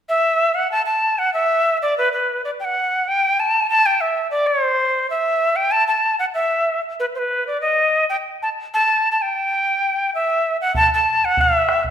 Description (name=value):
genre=andean folk, Andean ensemble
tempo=96 BPM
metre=2/4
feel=straight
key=E minor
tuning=A4 = 440 Hz
part: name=breathy bright quena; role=melody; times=0.1-11.9 s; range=B4 to A5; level=-16 LUFS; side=equal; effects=none
part: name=bombo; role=percussion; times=10.7-11.9 s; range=none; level=-24 LUFS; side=right 1 dB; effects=none
room=wet recital hall reverb, RT60 1.4 s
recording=minimal, uncompressed stereo recording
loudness=-16 LUFS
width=side -9 dB against mid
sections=0.7-10.7 A section; 10.7-11.9 A section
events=none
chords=none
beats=0.10 | 0.72 1.35 | 1.98 2.60 | 3.23 3.86 | 4.49 5.11 | 5.74 6.37 | 6.99 7.62 | 8.24 8.87 | 9.49 10.12 | 10.74 11.37